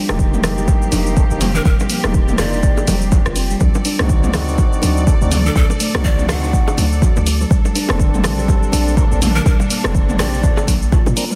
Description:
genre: afro house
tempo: 123 BPM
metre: 4/4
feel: swing 59% on 16ths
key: unclear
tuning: A4 = 440 Hz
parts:
  - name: clear studio string section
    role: sustained chords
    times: 0.0-11.4 s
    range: F3 to D5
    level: -31 LUFS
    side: equal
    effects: sidechain pumping
  - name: kalimba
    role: arpeggios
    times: 0.0-11.4 s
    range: D3 to G4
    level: -27 LUFS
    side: equal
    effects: sidechain pumping, digital delay
  - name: tonewheel organ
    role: stabs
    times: 0.1-11.2 s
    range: Bb3 to Bb4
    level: -29 LUFS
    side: equal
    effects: stopped rotary speaker, sidechain pumping, digital delay
  - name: warm 808-style bass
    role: bass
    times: 0.1-11.1 s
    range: Eb1 to Bb2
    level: -22 LUFS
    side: equal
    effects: sidechain pumping
  - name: deep house drum kit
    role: drums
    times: 0.1-11.4 s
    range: hi-hat, rim click, shaker, toms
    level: -24 LUFS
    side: equal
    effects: soft clipping on snare
  - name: bongos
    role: percussion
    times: 0.1-11.3 s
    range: none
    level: -30 LUFS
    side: equal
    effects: none
  - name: congas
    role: percussion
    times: 0.1-11.0 s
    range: none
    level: -29 LUFS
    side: equal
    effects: none
  - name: electronic kick drum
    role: drums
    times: 0.2-11.0 s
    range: none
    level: -17 LUFS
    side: equal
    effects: none
  - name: breathy large pan pipes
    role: melody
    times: 1.6-10.7 s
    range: A4 to F#5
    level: -28 LUFS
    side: equal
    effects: digital delay
room: light reverb, studio reverb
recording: dense, heavily limited modern master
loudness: -16 LUFS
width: mono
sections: 0.0-11.4 A section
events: none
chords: 0.0 F9sus4; 3.6 D7b9; 7.5 Bbmaj7

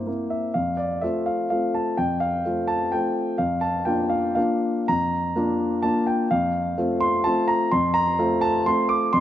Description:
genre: classical, piano waltz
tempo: 109-135 BPM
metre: 3/4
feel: rubato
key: F major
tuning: A4 = 440 Hz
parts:
  - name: warm grand piano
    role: solo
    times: 0.0-9.2 s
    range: F2 to D6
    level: -20 LUFS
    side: equal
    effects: none
room: moderate concert hall reverb, RT60 2.4 s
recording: close, detailed microphones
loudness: -20 LUFS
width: side -12 dB against mid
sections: 0.0-9.2 A section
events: none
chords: 0.0 C7/G; 0.6 F; 3.4 Bb/F; 6.3 F

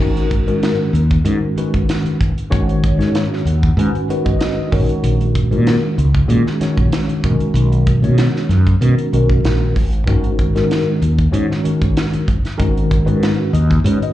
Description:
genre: electric jazz fusion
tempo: 95 BPM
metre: 4/4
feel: straight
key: G# minor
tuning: A4 = 441 Hz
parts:
  - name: tine electric piano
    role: accompaniment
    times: 0.0-14.1 s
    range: D#3 to G#5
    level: -19 LUFS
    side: left 1 dB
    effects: medium stereo tremolo, phaser
  - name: mellow fretless electric bass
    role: bass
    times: 0.0-14.0 s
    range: G#1 to B2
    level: -15 LUFS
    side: equal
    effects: none
  - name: crisp fusion drum kit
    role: drums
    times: 0.2-14.1 s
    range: hi-hat, kick drum, snare drum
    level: -21 LUFS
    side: equal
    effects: vintage 12-bit sampler grit
room: light reverb, small room ambience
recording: live gig heard through the venue's PA, cassette tape, club reverb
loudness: -13 LUFS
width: side -14 dB against mid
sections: 0.0-14.1 A section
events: tine electric piano fill 3.1-5.0, 13.2-14.1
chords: 0.0 G#m9; 4.7 F#/A#; 7.2 G#m9

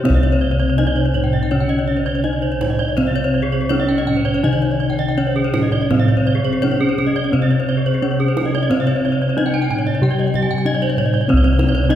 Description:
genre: Balinese gamelan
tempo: 82-97 BPM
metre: 4/4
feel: straight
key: C pelog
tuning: A4 = 439 Hz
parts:
  - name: gamelan-type bronze metallophone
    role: melody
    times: 0.0-12.0 s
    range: C4 to G4-30c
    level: -21 LUFS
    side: equal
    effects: none
  - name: gamelan-type bronze metallophone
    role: accompaniment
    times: 0.0-12.0 s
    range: C3 to G3-30c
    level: -23 LUFS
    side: right 2 dB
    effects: none
  - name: gamelan-type bronze metallophone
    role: arpeggios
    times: 0.0-12.0 s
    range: Ab4-20c to Ab5-20c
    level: -24 LUFS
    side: left 3 dB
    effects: none
  - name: gamelan-type bossed gongs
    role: bass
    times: 0.0-12.0 s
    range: C2 to Db4+20c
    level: -20 LUFS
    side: left 1 dB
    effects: none
  - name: gamelan-type bronze metallophone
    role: arpeggios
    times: 0.1-11.9 s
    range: Ab4-20c to Ab5-20c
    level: -25 LUFS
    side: right 4 dB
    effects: none
  - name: kendang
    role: percussion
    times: 0.1-12.0 s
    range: none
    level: -24 LUFS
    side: right 2 dB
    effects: none
room: wet concert hall reverb, RT60 2.4 s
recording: heard from further back in the room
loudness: -15 LUFS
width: side -11 dB against mid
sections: 0.0-11.3 A section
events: none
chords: none

